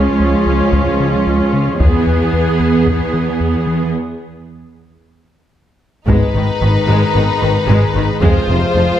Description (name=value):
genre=cinematic, hybrid orchestral and electronic film score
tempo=112 BPM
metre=4/4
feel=straight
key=unclear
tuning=A4 = 440 Hz
part: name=rich symphonic viola section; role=accompaniment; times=0.0-8.8 s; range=C3 to G#4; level=-19 LUFS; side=right 2 dB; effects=none
part: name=hollow soft pad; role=sustained chords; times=0.0-9.0 s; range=D#3 to C#5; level=-20 LUFS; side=equal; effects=chorus
part: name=round analog bass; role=riff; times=0.0-8.9 s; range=C#2 to E3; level=-18 LUFS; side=left 2 dB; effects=none
part: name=warm symphonic cello section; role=bass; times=0.0-8.8 s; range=C#2 to G#2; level=-19 LUFS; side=right 2 dB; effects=none
part: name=taiko ensemble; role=drums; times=0.7-8.7 s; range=none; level=-18 LUFS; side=equal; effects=none
part: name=warm symphonic violin section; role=melody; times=6.1-9.0 s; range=B4 to C5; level=-21 LUFS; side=left 5 dB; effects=none
part: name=rich studio violin section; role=second line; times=6.1-9.0 s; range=D#4 to F4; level=-21 LUFS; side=left 4 dB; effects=none
part: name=dark French horn section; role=sustained chords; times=6.1-8.4 s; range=B3 to G#4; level=-26 LUFS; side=left 2 dB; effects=none
part: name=rich symphonic double bass section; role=bass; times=6.1-8.8 s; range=F1 to G#1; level=-20 LUFS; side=right 2 dB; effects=none
room=moderate scoring stage reverb, RT60 2.0 s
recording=none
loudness=-12 LUFS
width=side -11 dB against mid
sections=0.0-6.1 A section; 6.1-9.0 B section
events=break 3.9-6.1; drum fill 5.3-6.1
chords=0.0 C#; 1.8 E; 3.9 N.C.; 6.1 G#m; 8.2 Fm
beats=0.19 0.72 1.26 | 1.80 2.33 2.87 3.40 | 3.94 4.47 5.01 5.55 | 6.08 6.62 7.15 7.69 | 8.22 8.76